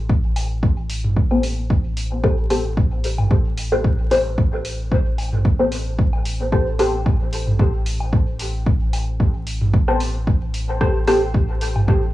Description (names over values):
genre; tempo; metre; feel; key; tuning
dub techno; 112 BPM; 4/4; swing 54% on 16ths; A minor; A4 = 440 Hz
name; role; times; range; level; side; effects
soft dub sub bass; bass; 0.0-12.1 s; A1; -25 LUFS; equal; sidechain pumping
electronic kick drum; drums; 0.1-12.0 s; none; -18 LUFS; equal; overdrive, cassette tape
electronic hi-hat; drums; 0.4-11.7 s; none; -33 LUFS; equal; overdrive, cassette tape
electronic woodblock and toms; percussion; 0.4-11.9 s; none; -25 LUFS; right 1 dB; sidechain pumping on perc, cassette tape, sidechain pumping on toms
filtered dub chord stab; stabs; 1.3-11.3 s; B3 to C5; -22 LUFS; left 1 dB; phaser, sidechain pumping, cassette tape, dub echo
room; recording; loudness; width
little or no reverb; home recording on cassette, vinyl crackle; -17 LUFS; side -15 dB against mid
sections
0.0-12.1 A section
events
none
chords
0.0 Am9